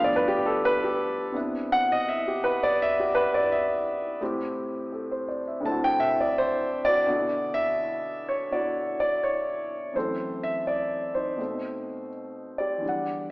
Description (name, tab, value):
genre	solo jazz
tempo	84 BPM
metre	4/4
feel	swing 66% on 8ths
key	D major from 7.1 s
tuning	A4 = 439 Hz
part	dark upright piano	solo	0.0-13.3 s	D2 to A5	-24 LUFS	equal	none
room	moderate scoring stage reverb, RT60 1.7 s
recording	recorded in a church or concert hall, AM radio sound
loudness	-24 LUFS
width	side -22 dB against mid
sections	0.0-7.1 A section; 7.1-13.3 B section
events	upright piano solo 0.0-7.1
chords	0.0 G9; 1.3 Cmaj9; 4.2 Am7; 5.6 D9; 7.1 D69; 10.0 F#m7b5; 11.4 B7b9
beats	0.63 | 1.34 2.06 2.77 3.49 | 4.21 4.92 5.64 6.36 | 7.08 7.79 8.51 9.23 | 9.95 10.67 11.39 12.11 | 12.82